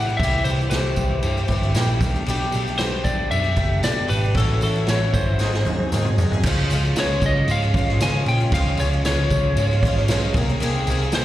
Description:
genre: folk rock and heartland rock.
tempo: 115 BPM.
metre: 4/4.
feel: straight.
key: unclear.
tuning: A4 = 441 Hz.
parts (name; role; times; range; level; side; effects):
lightly driven lead guitar; melody; 0.0-11.2 s; A4 to Ab5; -25 LUFS; left 2 dB; slapback echo.
picked twelve-string acoustic guitar; accompaniment; 0.0-11.2 s; G#2 to G#4; -28 LUFS; left 1 dB; slapback echo.
electric guitar through a small old amp; riff; 0.0-11.2 s; G#2 to G#4; -29 LUFS; right 2 dB; slapback echo.
vintage muted picked electric bass; bass; 0.0-11.2 s; F#1 to Db3; -21 LUFS; equal; none.
vintage drum kit; drums; 0.2-11.2 s; crash cymbal, kick drum, snare drum, toms; -24 LUFS; equal; none.
tambourine; percussion; 0.2-11.2 s; none; -39 LUFS; right 4 dB; none.
room: studio ambience.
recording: live gig heard through the venue's PA, recital hall reverb.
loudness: -18 LUFS.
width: side -14 dB against mid.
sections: 0.0-6.5 A section; 6.5-11.2 A section.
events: drum fill 5.4-6.5.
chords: 0.0 C; 2.0 Gadd9/B; 4.4 A6; 5.4 G#7; 6.5 Db; 10.4 Abadd9.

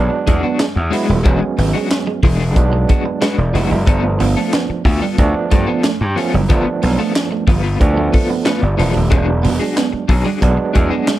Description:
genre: funk.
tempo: 92 BPM.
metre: 4/4.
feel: straight.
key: E mixolydian.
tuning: A4 = 440 Hz.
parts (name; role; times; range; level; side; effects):
overdriven tine electric piano; stabs; 0.0-11.2 s; F3 to D5; -20 LUFS; right 5 dB; fast tremolo.
gritty slap bass; bass; 0.0-10.9 s; D#1 to G2; -16 LUFS; equal; overdrive.
electric guitar at the edge of break-up; accompaniment; 0.1-11.1 s; G#3 to B4; -22 LUFS; left 7 dB; tremolo.
clean electric guitar; riff; 0.3-11.2 s; E3 to B3; -22 LUFS; right 6 dB; none.
crisp fusion drum kit; drums; 0.3-11.2 s; handclaps, hi-hat, kick drum, snare drum; -17 LUFS; equal; none.
room: little or no reverb.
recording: dark, warm production.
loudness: -13 LUFS.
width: side -14 dB against mid.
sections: 0.0-11.2 A section.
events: tine electric piano fill 2.9-3.9, 7.8-9.1.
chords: 0.0 E9; 3.9 G9; 9.1 E9.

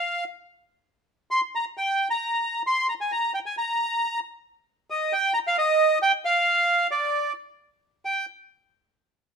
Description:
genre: tango.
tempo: 134 BPM.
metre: 4/4.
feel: rubato.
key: unclear.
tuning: A4 = 440 Hz.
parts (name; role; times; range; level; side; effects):
bandoneon; solo; 0.0-8.3 s; D5 to C6; -22 LUFS; right 1 dB; none.
room: moderate studio reverb, RT60 0.9 s.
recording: none.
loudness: -22 LUFS.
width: side -6 dB against mid.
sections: 0.0-8.0 A section; 8.0-9.3 B section.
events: none.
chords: none.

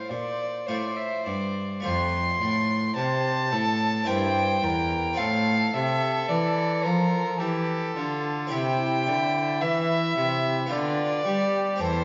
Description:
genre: classical, baroque-style sonata movement with continuo.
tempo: 54 BPM.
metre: 3/4.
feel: straight.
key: F major.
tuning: A4 = 441 Hz.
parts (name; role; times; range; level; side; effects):
warm violin; melody; 0.0-12.0 s; A4 to C6; -29 LUFS; equal; none.
dark violin; second line; 0.0-12.0 s; E4 to E5; -33 LUFS; equal; none.
harpsichord; accompaniment; 0.0-12.0 s; E2 to C5; -33 LUFS; equal; none.
warm cello; bass; 0.0-12.0 s; E2 to G3; -31 LUFS; equal; none.
room: moderate recital hall reverb, RT60 1.5 s.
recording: nothing above 7.6 kHz.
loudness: -25 LUFS.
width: mono.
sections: 0.0-1.8 A section; 1.8-12.0 B section.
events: none.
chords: 0.0 F; 4.1 C7/G; 5.2 F/A; 8.5 C; 10.7 G7/D.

